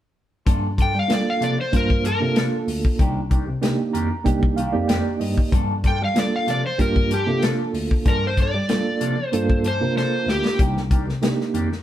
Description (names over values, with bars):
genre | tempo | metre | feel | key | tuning
straight-eighth soul blues | 95 BPM | 4/4 | swing 54% on 16ths | G minor | A4 = 440 Hz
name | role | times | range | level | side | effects
mellow electric guitar | stabs | 0.5-11.7 s | Eb3 to A4 | -30 LUFS | left 1 dB | phaser
overdriven tine electric piano | bass | 0.5-11.7 s | C2 to G3 | -26 LUFS | left 1 dB | fast tremolo
warm soul drum kit | drums | 0.5-11.8 s | hi-hat, kick drum, snare drum | -21 LUFS | left 1 dB | none
overdriven slide guitar | melody | 0.8-10.6 s | G4 to G5 | -24 LUFS | equal | none
reed electric piano | accompaniment | 1.1-11.7 s | Bb3 to Bb5 | -24 LUFS | right 4 dB | tremolo
room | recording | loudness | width
light reverb | band playing live in one room | -18 LUFS | side -12 dB against mid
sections
0.5-11.8 A section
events
reed electric piano fill 3.6-5.5; drum fill 10.0-10.6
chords
0.5 Gm9; 3.0 Cm9; 5.5 Gm9; 10.6 Cm9